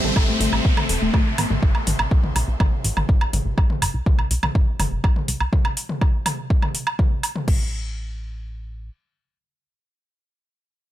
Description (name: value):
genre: melodic techno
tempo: 123 BPM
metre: 4/4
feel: straight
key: unclear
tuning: A4 = 440 Hz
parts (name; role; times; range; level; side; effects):
- deep dark ambient pad; sustained chords; 0.0-1.6 s; A3 to C5; -34 LUFS; right 2 dB; none
- woody wave-folded pluck; arpeggios; 0.0-1.6 s; A3 to A4; -26 LUFS; left 3 dB; analog chorus, vintage 12-bit sampler grit, sidechain pumping, ping-pong delay
- plucky analog bass; bass; 0.0-8.9 s; E1 to C2; -25 LUFS; equal; sidechain pumping
- deep house drum kit; drums; 0.0-7.6 s; crash cymbal, hi-hat, toms, woodblock; -25 LUFS; right 1 dB; overdrive, sidechain pumping on hats, sidechain pumping on perc, sidechain pumping on toms, sidechain pumping on cymbals
- downlifter; sound effects; 0.0-3.6 s; none; -29 LUFS; equal; none
- bright studio string section; texture; 0.0-3.6 s; C4 to C6; -32 LUFS; equal; sidechain pumping
- electronic kick drum; drums; 0.2-7.6 s; none; -18 LUFS; equal; overdrive
room: little or no reverb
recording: none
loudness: -18 LUFS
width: side -14 dB against mid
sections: 0.0-7.5 A section; 7.5-10.9 B section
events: fade-out on string section 0.0-3.6; filter sweep on analog synth bass 0.0-5.5; filter sweep on synth pluck 0.0-1.6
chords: 0.0 Am; 3.6 C5; 7.5 N.C.